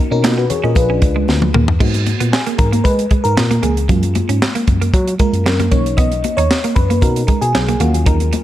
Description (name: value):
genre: early-eighties boogie funk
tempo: 115 BPM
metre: 4/4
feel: straight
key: unclear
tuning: A4 = 440 Hz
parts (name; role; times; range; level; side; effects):
- clean electric guitar; riff; 0.0-8.4 s; Gb3 to D#4; -22 LUFS; right 6 dB; analog chorus
- FM electric piano with soft pad layer; accompaniment; 0.1-8.4 s; Gb3 to D#5; -20 LUFS; left 2 dB; chorus, phaser
- tine electric piano; bass; 0.1-8.3 s; Bb1 to Ab3; -17 LUFS; equal; none
- tight funk drum kit; drums; 0.2-8.4 s; crash cymbal, handclaps, hi-hat, kick drum, snare drum, toms; -16 LUFS; equal; none
- congas; percussion; 0.2-8.4 s; none; -26 LUFS; left 6 dB; none
room: light reverb, studio ambience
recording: dark, warm production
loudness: -12 LUFS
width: side -13 dB against mid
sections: 0.0-1.8 A section; 1.8-8.4 B section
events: drum fill 1.3-1.8; FM electric piano solo 1.8-8.4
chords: 0.0 Bmaj9; 0.8 Bb7b9; 1.8 Abm9; 3.9 Gbmaj7; 5.7 Bmaj7; 7.8 Ebm9